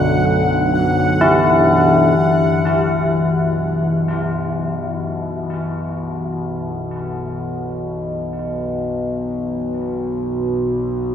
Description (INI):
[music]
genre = dark ambient drone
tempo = free time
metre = none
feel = none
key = B minor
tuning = A4 = 439 Hz
[part]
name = old church bells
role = arpeggios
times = 0.0-6.9 s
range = F#3 to E4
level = -19 LUFS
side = left 1 dB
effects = tape echo
[part]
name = overtone-sweeping drone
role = drone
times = 0.0-11.1 s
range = B1 to D3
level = -21 LUFS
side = equal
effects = chorus, built-in reverb
[part]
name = bubbling stepped-filter texture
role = texture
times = 0.0-2.2 s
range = F#5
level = -23 LUFS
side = equal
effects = chorus, built-in reverb
[sound]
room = wet cathedral reverb, RT60 6.5 s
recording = none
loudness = -16 LUFS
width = side -8 dB against mid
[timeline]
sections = 0.0-2.2 A section; 2.2-11.1 B section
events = fade-in on synth drone 2.2-11.1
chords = 0.0 Bm; 2.2 N.C.